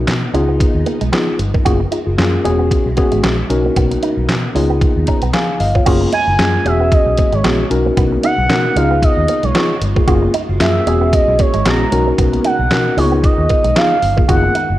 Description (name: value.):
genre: early-eighties boogie funk.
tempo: 114 BPM.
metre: 4/4.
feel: swing 56% on 16ths.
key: F# major.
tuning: A4 = 440 Hz.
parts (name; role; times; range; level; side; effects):
tine electric piano; accompaniment; 0.0-14.5 s; A#3 to A#5; -18 LUFS; left 2 dB; none.
soft string machine; sustained chords; 0.0-14.8 s; C#3 to E#4; -26 LUFS; left 1 dB; phaser, ensemble chorus.
vintage muted fingered electric bass; bass; 0.0-14.8 s; E1 to B2; -18 LUFS; equal; none.
electric guitar with an envelope filter; riff; 0.1-14.7 s; G#3 to F#4; -24 LUFS; right 6 dB; analog chorus.
detuned 8-bit digital drum machine; drums; 0.1-14.7 s; crash cymbal, handclaps, hi-hat, kick drum, snare drum; -17 LUFS; equal; none.
expressive portamento lead; melody; 6.1-14.8 s; C#5 to A#5; -17 LUFS; right 2 dB; chorus, tape echo.
room: light reverb.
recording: none.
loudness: -12 LUFS.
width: side -14 dB against mid.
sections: 0.0-5.9 A section; 5.9-14.8 B section.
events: tine electric piano fill 4.8-5.9.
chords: 0.3 C#9; 1.7 F#maj9; 2.4 E6; 3.5 Bmaj9; 4.5 C#9; 5.9 F#maj9; 6.7 E6; 7.7 Bmaj9; 8.8 C#9; 10.1 F#maj9; 10.9 E6; 11.9 Bmaj9; 13.0 C#9; 14.3 F#maj9.